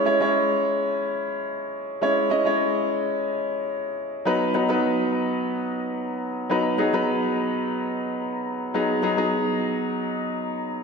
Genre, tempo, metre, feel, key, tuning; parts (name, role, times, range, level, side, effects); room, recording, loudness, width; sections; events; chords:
pop; free time; C# minor; A4 = 441 Hz
clear concert grand piano; solo; 0.0-10.8 s; F#3 to D#5; -22 LUFS; equal; ping-pong delay
wet recital hall reverb, RT60 1.6 s; -22 LUFS; side -5 dB against mid
0.0-10.8 A section
0.0 C#m; 4.3 G#m7